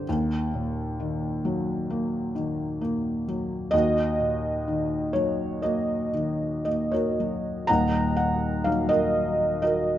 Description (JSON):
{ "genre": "classical, lyrical solo piano", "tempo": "56-67 BPM", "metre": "4/4", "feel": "rubato", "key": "Eb minor", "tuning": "A4 = 436 Hz", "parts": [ { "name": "felt-muted upright piano", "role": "solo", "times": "0.0-10.0 s", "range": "Eb1 to Bb5", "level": "-23 LUFS", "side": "equal", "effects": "none" } ], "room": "moderate recital hall reverb, RT60 1.5 s", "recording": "none", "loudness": "-23 LUFS", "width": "side -12 dB against mid", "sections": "0.0-7.7 A section; 7.7-10.0 A section", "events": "none", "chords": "0.1 Ebm" }